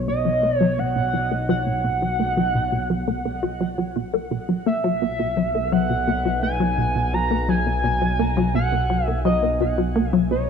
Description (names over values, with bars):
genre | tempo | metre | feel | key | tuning
ambient, sequencer-driven space music | 85 BPM | 4/4 | straight | B major | A4 = 440 Hz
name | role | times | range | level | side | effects
pulse-width lead | melody | 0.0-10.5 s | C#5 to A#5 | -24 LUFS | right 1 dB | chorus, tape echo
resonant blip pluck | riff | 0.0-10.4 s | B2 to F#4 | -23 LUFS | left 2 dB | chorus, phaser, tape echo
analog drone | bass | 0.0-10.5 s | B1 | -26 LUFS | equal | chorus
room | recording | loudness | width
moderate plate reverb, RT60 3.0 s | none | -19 LUFS | side -6 dB against mid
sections
0.0-10.5 A section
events
filter sweep on synth arpeggio sound 0.0-10.5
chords
0.0 B5